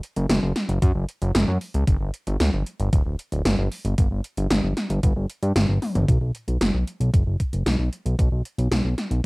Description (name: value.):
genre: synthwave.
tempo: 114 BPM.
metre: 4/4.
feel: straight.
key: B minor.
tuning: A4 = 440 Hz.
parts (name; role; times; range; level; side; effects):
80s electronic pad drums; drums; 0.0-9.2 s; hi-hat, snare drum, toms; -24 LUFS; equal; gated reverb on snare and toms, overdrive, cassette tape.
fat analog bass; bass; 0.2-9.2 s; D1 to G2; -22 LUFS; equal; none.
electronic kick drum; drums; 0.8-8.3 s; none; -20 LUFS; equal; cassette tape.
room: little or no reverb.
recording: home recording on cassette.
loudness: -20 LUFS.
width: side -26 dB against mid.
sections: 0.0-6.1 A section; 6.1-9.3 B section.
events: drum fill 5.8.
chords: none.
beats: 0.29 0.82 1.35 | 1.87 2.40 2.93 3.45 | 3.98 4.51 5.03 5.56 | 6.08 6.61 7.14 7.66 | 8.19 8.72.